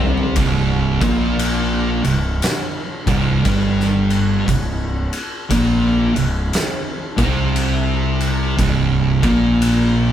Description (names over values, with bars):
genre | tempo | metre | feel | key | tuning
stoner and doom metal | 58 BPM | 4/4 | swing 63% on 8ths | unclear | A4 = 443 Hz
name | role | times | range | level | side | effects
thick fuzz guitar | riff | 0.0-10.1 s | C2 to C4 | -20 LUFS | left 3 dB | distortion
thick fuzz guitar | riff | 0.0-10.1 s | C2 to C4 | -20 LUFS | right 5 dB | distortion
fuzz fingered electric bass | bass | 0.0-10.1 s | C1 to C2 | -21 LUFS | equal | overdrive
oversized low-tuned drum kit | drums | 0.2-9.9 s | kick drum, ride cymbal, snare drum, toms | -22 LUFS | equal | none
room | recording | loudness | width
light reverb | band playing live in one room | -15 LUFS | side -10 dB against mid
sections
0.4-10.1 A section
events
drum fill 0.0-0.4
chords
0.4 C5